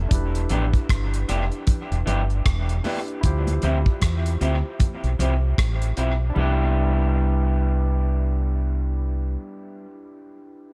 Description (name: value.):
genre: lovers rock reggae.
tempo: 77 BPM.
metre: 4/4.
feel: swing 60% on 16ths.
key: C major.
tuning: A4 = 440 Hz.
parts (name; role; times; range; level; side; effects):
barky tine electric piano; accompaniment; 0.0-10.7 s; D4 to C5; -36 LUFS; equal; overdrive, dub echo.
deep dub fingered electric bass; bass; 0.0-9.4 s; E1 to E2; -24 LUFS; equal; none.
damped 70s drum kit; drums; 0.1-6.2 s; hi-hat, kick drum, rim click; -25 LUFS; equal; gated reverb, dub echo.
congas; percussion; 0.1-6.7 s; none; -37 LUFS; equal; none.
electric guitar through a small old amp; stabs; 0.5-9.9 s; E3 to G4; -32 LUFS; equal; dub echo.
room: small room ambience.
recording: none.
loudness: -23 LUFS.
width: mono.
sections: 0.0-6.4 A section; 6.4-9.5 B section.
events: none.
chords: 0.1 Em7; 3.2 Dm11; 6.4 Cmaj7.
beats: | 0.11 0.89 1.67 2.45 | 3.23 4.01 4.80 5.58 | 6.36 7.14 7.92 8.70.